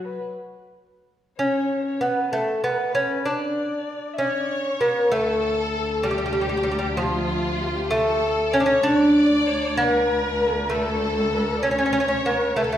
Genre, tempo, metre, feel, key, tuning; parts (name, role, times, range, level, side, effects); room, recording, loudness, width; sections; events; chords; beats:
Persian modal ensemble; 64 BPM (dotted quarters); 6/8; straight; D dastgah mahur, D avaz esfahan from 5.1 s; A4 = 440 Hz
lute; melody; 0.0-12.8 s; F3 to D4; -22 LUFS; right 1 dB
dark kamancheh; second line; 0.0-12.8 s; F4 to E5; -27 LUFS; left 3 dB
rich studio violin section; second line; 4.2-12.8 s; F4 to D5; -28 LUFS; left 1 dB
dark cello; drone; 5.1-12.8 s; D2; -30 LUFS; equal
wet recital hall reverb, RT60 1.7 s; recorded in a church or concert hall; -20 LUFS; side -11 dB against mid
0.0-5.1 A section; 5.1-12.8 B section
0.45 | 1.38 2.32 | 3.25 4.18 | 5.12 6.05 | 6.99 7.92 | 8.85 9.79 | 10.72 11.65 | 12.58